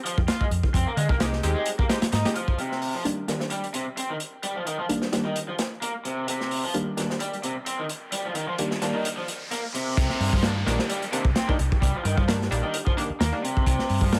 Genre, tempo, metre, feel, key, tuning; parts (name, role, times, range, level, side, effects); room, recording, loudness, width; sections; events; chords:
breakbeat, breaks; 130 BPM; 4/4; swing 55% on 16ths; C minor; A4 = 440 Hz
raw garage guitar; riff; 0.0-14.1 s; C3 to F4; -32 LUFS; equal; overdrive, low-pass filter, digital delay
band-passed chord stab; stabs; 0.0-14.2 s; Eb3 to G4; -32 LUFS; equal; chorus, digital delay
crunchy breakbeat drum kit; drums; 0.1-14.2 s; crash cymbal, hi-hat, kick drum, snare drum; -29 LUFS; equal; high-pass filter on kick, high-pass filter on hats, high-pass filter on cymbals, high-pass filter on snare, high-pass filter on room
hollow-body short-scale picked electric bass; bass; 0.2-2.2, 10.0-14.2 s; Bb1 to D3; -28 LUFS; equal
riser and downlifter; sound effects; 7.6-13.7 s; -40 LUFS; equal
light reverb, studio ambience; -26 LUFS; mono
0.0-2.6 A section; 2.6-10.0 B section; 10.0-14.2 C section
filter sweep on synth stab 2.6-10.0; riser 7.6-10.0; drop 10.0-14.2
0.0 Fm7; 2.6 Cm7